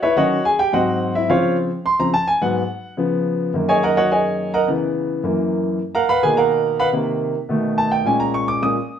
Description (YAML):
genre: jazz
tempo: 213 BPM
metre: 4/4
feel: straight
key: Db major, F# major from 3.5 s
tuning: A4 = 440 Hz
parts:
  - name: warm concert grand piano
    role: solo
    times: 0.0-9.0 s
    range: F#2 to D#6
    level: -17 LUFS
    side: equal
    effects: none
room: wet studio reverb, RT60 0.8 s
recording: heard from further back in the room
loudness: -17 LUFS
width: side -8 dB against mid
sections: 0.0-3.5 A section; 3.5-9.0 A section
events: grand piano solo 0.0-9.0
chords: 0.2 Ebm7; 0.7 Ab7; 1.3 Dbmaj7; 2.4 Abm7; 3.0 Db7; 3.5 F#69; 4.7 C#m7; 5.2 F#7; 5.8 Bmaj7#11; 6.9 Cm7; 7.5 B7; 8.1 A#m7